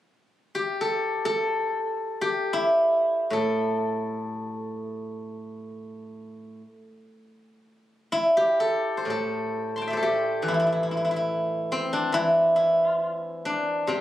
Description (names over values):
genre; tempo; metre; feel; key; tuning
chinese traditional, Chinese solo plucked strings; free time; none; none; A yu mode; A4 = 443 Hz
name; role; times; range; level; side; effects
steel-string zither; solo; 0.5-14.0 s; A2 to C6; -23 LUFS; equal; none
room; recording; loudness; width
light reverb; recorded on a phone in the room, club reverb; -23 LUFS; side -13 dB against mid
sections
0.0-8.6 A section; 8.6-14.0 B section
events
none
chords
none